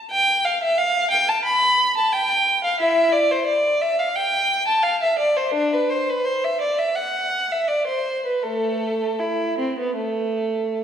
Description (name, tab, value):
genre	classical, baroque-style suite movement for unaccompanied violin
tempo	78-91 BPM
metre	4/4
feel	rubato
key	A minor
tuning	A4 = 444 Hz
part	warm violin	solo	0.1-10.8 s	A3 to B5	-18 LUFS	equal	none
room	wet concert hall reverb, RT60 1.7 s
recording	heard from further back in the room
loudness	-18 LUFS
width	side -8 dB against mid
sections	0.0-10.8 A section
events	none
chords	none